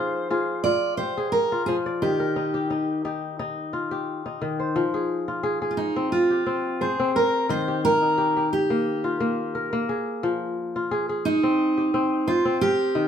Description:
west african traditional, West African string and xylophone music; 88 BPM; 4/4; straight; F minor; A4 = 440 Hz
fingerpicked steel-string acoustic guitar; melody; 0.0-13.1 s; Eb4 to D5; -23 LUFS; right 2 dB
kora; arpeggios; 0.0-13.1 s; Eb3 to D5; -25 LUFS; left 3 dB
wet studio reverb, RT60 0.6 s; band playing live in one room; -22 LUFS; side -8 dB against mid
0.0-4.8 A section; 4.8-13.1 B section
0.0 Fm; 2.0 Eb; 4.8 Fm; 7.5 Eb; 10.2 Fm

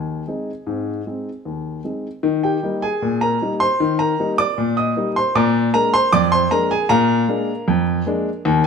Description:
ragtime piano; 77 BPM; 2/4; straight; Eb major; A4 = 440 Hz
warm grand piano; solo; 0.0-8.7 s; Eb2 to Eb6; -17 LUFS; equal
moderate stone room reverb, RT60 1.1 s; band playing live in one room; -17 LUFS; side -6 dB against mid
0.0-2.2 A section; 2.2-8.7 B section
0.0 Ab; 2.2 Eb; 5.3 Bb7

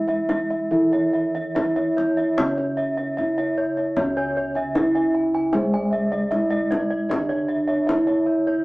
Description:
Javanese gamelan; 70-77 BPM; 4/4; straight; A4 = 443 Hz
gamelan-type bronze metallophone; melody; 0.0-8.6 s; C#4 to G#4-30c; -23 LUFS; right 1 dB
gamelan-type bronze metallophone; accompaniment; 0.0-8.6 s; C#3 to G#3-30c; -29 LUFS; equal
gamelan-type bossed gongs; arpeggios; 0.0-8.5 s; C#5 to G#5-30c; -28 LUFS; left 1 dB
gamelan-type bronze metallophone; arpeggios; 0.0-8.6 s; C#5 to G#5-30c; -28 LUFS; right 1 dB
gamelan-type bossed gongs; bass; 0.0-8.6 s; C#2 to E4-30c; -29 LUFS; equal
kendang; percussion; 0.1-8.6 s; -28 LUFS; left 1 dB
wet studio reverb, RT60 0.6 s; band playing live in one room, small speaker sound; -19 LUFS; side -21 dB against mid
0.0-4.0 A section; 4.0-8.6 B section

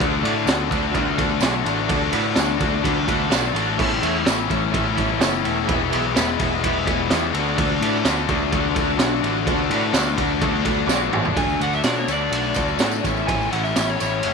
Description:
garage rock duo or trio; 127 BPM; 4/4; straight; A4 = 436 Hz
overdriven combo organ; sustained chords; 0.0-14.3 s; B3 to A5; -28 LUFS; right 14 dB
raw garage guitar; riff; 0.0-14.3 s; A2 to F#4; -22 LUFS; left 12 dB; overdrive
growling picked electric bass; bass; 0.0-14.3 s; E1 to B2; -26 LUFS; right 3 dB; overdrive
raw garage drum kit; drums; 0.0-14.3 s; crash cymbal, kick drum, ride cymbal, snare drum, toms; -23 LUFS; right 2 dB
tambourine; percussion; 0.5-14.1 s; -32 LUFS; right 21 dB
overdriven slide guitar; melody; 11.4-14.3 s; C#5 to G#5; -26 LUFS; right 3 dB
light reverb; 1960s-style stereo with parts hard left and right; -18 LUFS; side -5 dB against mid
0.0-11.4 A section; 11.4-14.3 B section
transistor combo organ fill 2.8-3.8, 10.7-11.4; drum fill 10.9-11.4
0.0 D; 3.8 A; 5.7 E; 7.3 D; 13.0 A

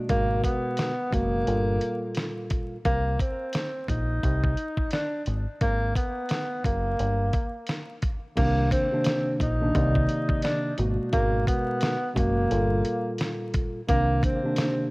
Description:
hip hop, boom-bap hip-hop; 87 BPM; 4/4; swing 59% on 16ths; C minor; A4 = 440 Hz
mellow tine electric piano; accompaniment; 0.0-2.8, 8.4-14.9 s; Bb2 to D5; -28 LUFS; equal; cassette tape, high-pass filter, low-pass filter
breathy tenor saxophone; melody; 0.1-14.9 s; Bb3 to Eb4; -28 LUFS; equal; high-pass filter, low-pass filter, cassette tape, tape echo
deep dub fingered electric bass; bass; 0.1-14.2 s; Gb1 to C2; -26 LUFS; equal
dusty soul sampler-style drum kit; drums; 0.1-14.8 s; crash cymbal, hi-hat, kick drum, snare drum; -28 LUFS; equal; vintage 12-bit sampler grit, cassette tape
digital ambience; home recording on cassette, vinyl crackle; -23 LUFS; side -24 dB against mid
0.0-8.4 A section; 8.4-14.9 B section
0.0 Abm9; 1.5 Gm9; 2.9 Cm7; 5.3 Abm7; 7.0 Gm; 8.4 Cm9; 10.8 Abm9; 12.5 Gm9; 13.9 Cm9

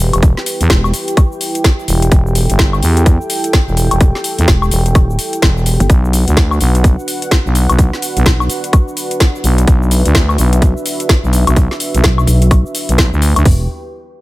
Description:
bass house; 127 BPM; 4/4; swing 61% on 16ths; E minor; A4 = 440 Hz
dark analog pad; sustained chords; 0.0-13.7 s; D4 to G5; -21 LUFS; right 1 dB; chorus, sidechain pumping
growling FM bass; bass; 0.0-13.7 s; E1 to E2; -12 LUFS; equal; tube saturation, sidechain pumping
garage drum kit; drums; 0.0-13.4 s; hi-hat, shaker, snare drum, woodblock; -18 LUFS; left 1 dB
garage drum kit; drums; 0.2-13.6 s; hi-hat, kick drum, toms; -10 LUFS; equal
pulsing pluck wobble bass; bass; 0.7-0.9, 4.5-8.5, 12.0-12.6 s; E1 to B1; -12 LUFS; equal; chorus, overdrive, sidechain pumping
little or no reverb; -10 LUFS; side -19 dB against mid
0.0-13.5 A section
drop 0.0-13.5
0.0 Em; 5.9 Bm; 13.5 Em

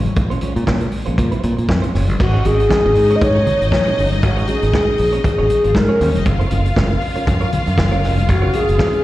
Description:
disco; 118 BPM; 4/4; swing 56% on 16ths; A4 = 440 Hz
clean electric guitar; accompaniment; 0.0-9.0 s; Ab3 to Eb5; -26 LUFS; right 5 dB; wide subtle chorus, slapback echo
modern bright fingered electric bass; bass; 0.1-8.8 s; F1 to Bb2; -18 LUFS; equal
vintage drum kit; drums; 0.1-9.0 s; crash cymbal, hi-hat, kick drum, snare drum; -20 LUFS; equal
congas; percussion; 0.1-8.9 s; -27 LUFS; left 4 dB
reedy wooden-headed alto flute; melody; 2.2-9.0 s; Gb4 to Eb5; -17 LUFS; left 1 dB; slapback echo
clear studio string section; second line; 2.2-9.0 s; F3 to F5; -25 LUFS; left 2 dB; slapback echo
light reverb, small room ambience; live gig heard through the venue's PA, recital hall reverb; -14 LUFS; side -15 dB against mid
0.0-2.2 A section; 2.2-9.0 B section
0.0 Bbm9; 2.2 Ab7sus4

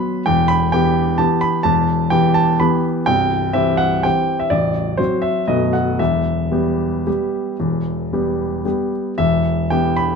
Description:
classical, piano waltz; 109-135 BPM; 3/4; rubato; E minor; A4 = 440 Hz
clear baby grand piano; solo; 0.0-10.2 s; A0 to B5; -15 LUFS; equal
moderate recital hall reverb, RT60 1.7 s; close, detailed microphones; -15 LUFS; side -5 dB against mid
0.0-9.2 A section
0.3 Em; 3.1 C; 4.5 F#dim/A; 5.5 B7; 6.0 Em

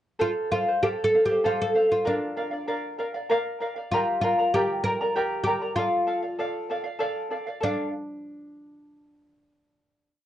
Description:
andean folk, Andean ensemble; 97 BPM; 3/4; straight; D minor; A4 = 440 Hz
oud; melody; 0.2-7.9 s; D4 to Bb4; -24 LUFS; equal
charango; accompaniment; 0.2-7.9 s; G4 to Bb5; -28 LUFS; right 1 dB
wet studio reverb, RT60 0.5 s; cassette tape, nothing above 10.5 kHz; -23 LUFS; side -12 dB against mid
0.2-7.6 A section; 7.6-9.5 final chord
0.2 F; 2.1 Bb; 3.9 Gm; 5.8 Dm

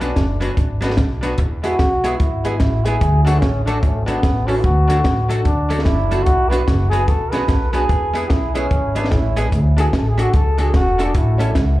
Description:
ska; 148 BPM; 4/4; swing 62% on 8ths; A4 = 440 Hz
warm trombone; melody; 0.0-11.8 s; A3 to B4; -21 LUFS; equal; tape echo
hollow-body jazz guitar; accompaniment; 0.0-11.6 s; F#3 to A4; -28 LUFS; right 4 dB
warm upright piano; stabs; 0.0-11.5 s; C#4 to B4; -26 LUFS; left 1 dB; tape echo, slapback echo
upright bass; bass; 0.0-11.8 s; E1 to E2; -18 LUFS; equal
compact cocktail drum kit; drums; 0.0-11.7 s; hi-hat, kick drum, snare drum; -20 LUFS; equal; tape echo
small room ambience; live gig heard through the venue's PA, club reverb; -15 LUFS; side -16 dB against mid
0.0-11.8 A section
trombone solo 0.0-11.8
0.0 Bm; 1.4 E; 3.0 D; 6.3 Bm; 7.9 E; 9.5 D; 11.1 A

